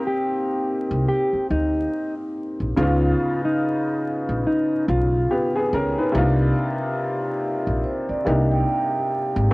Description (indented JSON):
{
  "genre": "hip hop",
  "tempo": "71 BPM",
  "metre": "4/4",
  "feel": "swing 59% on 16ths",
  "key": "unclear",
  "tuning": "A4 = 443 Hz",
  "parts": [
    { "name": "mellow electric guitar", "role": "melody", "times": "0.0-5.5 s", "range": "Eb4 to G4", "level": "-23 LUFS", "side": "equal", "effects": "low-pass filter, analog delay" },
    { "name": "warm upright piano", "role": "accompaniment", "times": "0.0-9.5 s", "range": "C3 to Cb5", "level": "-24 LUFS", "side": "left 1 dB", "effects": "cassette tape, low-pass filter" },
    { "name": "upright bass", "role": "bass", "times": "0.9-9.5 s", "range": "Ab1 to D2", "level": "-22 LUFS", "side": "equal", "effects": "none" },
    { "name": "vibraphone with soft mallets", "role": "second line", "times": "7.8-9.5 s", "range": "C5 to G5", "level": "-25 LUFS", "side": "right 3 dB", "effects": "low-pass filter, analog delay" }
  ],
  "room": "light reverb",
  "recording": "home recording on cassette, vinyl crackle",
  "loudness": "-20 LUFS",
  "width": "side -23 dB against mid",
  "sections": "0.0-9.5 A section",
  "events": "none",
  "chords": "0.0 Eb6; 2.8 Db9; 6.2 Cm11",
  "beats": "0.23 1.08 1.92 | 2.77 3.61 4.46 5.30 | 6.15 7.00 7.84 8.69 | 9.53"
}